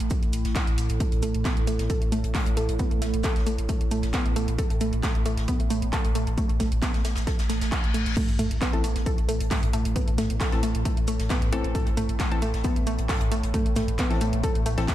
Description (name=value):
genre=driving peak-time techno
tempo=134 BPM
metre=4/4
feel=straight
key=A minor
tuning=A4 = 444 Hz
part: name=warm sub bass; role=bass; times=0.0-14.9 s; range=A1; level=-29 LUFS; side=equal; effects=tube saturation, sidechain pumping, low-pass filter
part: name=analog drone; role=drone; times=0.0-14.9 s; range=A2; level=-33 LUFS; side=right 1 dB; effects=chorus, sidechain pumping
part: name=techno drum kit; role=drums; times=0.0-14.9 s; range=crash cymbal, handclaps, hi-hat, toms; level=-34 LUFS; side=equal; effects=overdrive, sidechain pumping on hats, sidechain pumping on cymbals, sidechain pumping on toms
part: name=electronic kick drum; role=drums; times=0.1-14.9 s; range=none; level=-26 LUFS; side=equal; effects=overdrive
part: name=jazz brush drum kit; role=drums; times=0.1-14.9 s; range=hi-hat, shaker, snare drum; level=-41 LUFS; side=equal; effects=sidechain pumping on hats, high-pass filter on hats, high-pass filter on snare, sidechain pumping on perc, high-pass filter on perc, high-pass filter on room
part: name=wide unison pluck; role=riff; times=1.0-14.9 s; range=A3 to A4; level=-30 LUFS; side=right 1 dB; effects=cassette tape, sidechain pumping, diffuse ambient delay
part: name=reverse cymbal and sub drop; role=sound effects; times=7.4-10.0 s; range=none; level=-37 LUFS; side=left 3 dB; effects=none
part: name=filtered dub chord stab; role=stabs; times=8.7-14.9 s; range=E3 to A4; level=-34 LUFS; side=left 4 dB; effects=chorus, sidechain pumping, diffuse ambient delay
room=light reverb, digital ambience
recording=none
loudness=-23 LUFS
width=side -13 dB against mid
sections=0.0-8.2 A section; 8.2-14.9 B section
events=reverse cymbal 7.4-8.2; drop 8.2-14.9; impact 8.2-10.0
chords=0.0 N.C.; 8.2 Am